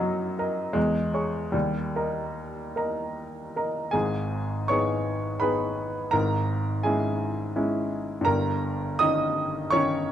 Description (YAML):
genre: classical, romantic character piece for solo piano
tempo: 73-86 BPM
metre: 3/4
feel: rubato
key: G# minor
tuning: A4 = 440 Hz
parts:
  - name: clear baby grand piano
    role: solo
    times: 0.0-10.1 s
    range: G1 to D#6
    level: -24 LUFS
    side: equal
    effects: none
room: moderate recital hall reverb, RT60 1.5 s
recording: close, detailed microphones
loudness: -24 LUFS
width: side -10 dB against mid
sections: 0.0-3.9 A section; 3.9-10.1 B section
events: none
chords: 0.0 D#m/F#; 0.8 C#m/E; 1.5 D#; 3.9 G#m; 6.1 C#m/G#; 8.3 D#7/G